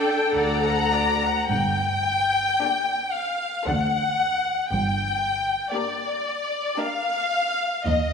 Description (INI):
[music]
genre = classical, slow romantic movement for string orchestra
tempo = 48-59 BPM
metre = 3/4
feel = rubato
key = G minor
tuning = A4 = 440 Hz
[part]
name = warm studio violin section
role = melody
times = 0.0-8.1 s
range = D5 to Bb5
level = -23 LUFS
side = left 3 dB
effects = none
[part]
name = rich studio violin section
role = second line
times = 0.0-7.6 s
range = G4 to D5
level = -35 LUFS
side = left 3 dB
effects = none
[part]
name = rich chamber viola section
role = accompaniment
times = 0.0-7.6 s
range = A3 to G5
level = -27 LUFS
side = left 1 dB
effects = none
[part]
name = rich chamber cello section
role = bass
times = 0.0-8.1 s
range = D2 to D4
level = -30 LUFS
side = right 3 dB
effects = none
[part]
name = rich chamber double bass section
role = bass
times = 0.3-8.1 s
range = G1 to Eb2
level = -28 LUFS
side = right 2 dB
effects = none
[sound]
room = wet scoring stage reverb, RT60 2.0 s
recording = minimal, uncompressed stereo recording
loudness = -21 LUFS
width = side -6 dB against mid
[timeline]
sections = 0.0-1.5 A section; 1.5-8.1 B section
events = none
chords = 0.3 D; 1.5 Gm; 3.7 D7; 4.7 Gm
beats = 0.35 | 1.50 2.61 3.67 | 4.71 5.73 6.79 | 7.85